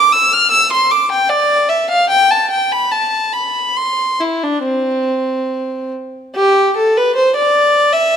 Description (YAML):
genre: classical, baroque-style suite movement for unaccompanied violin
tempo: 68-78 BPM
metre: 3/4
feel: rubato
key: C major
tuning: A4 = 440 Hz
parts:
  - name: warm violin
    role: solo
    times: 0.0-8.2 s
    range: C4 to F6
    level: -12 LUFS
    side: equal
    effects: none
room: moderate recital hall reverb, RT60 1.5 s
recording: none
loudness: -12 LUFS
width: side -8 dB against mid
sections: 0.0-6.4 A section; 6.4-8.2 B section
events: none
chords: none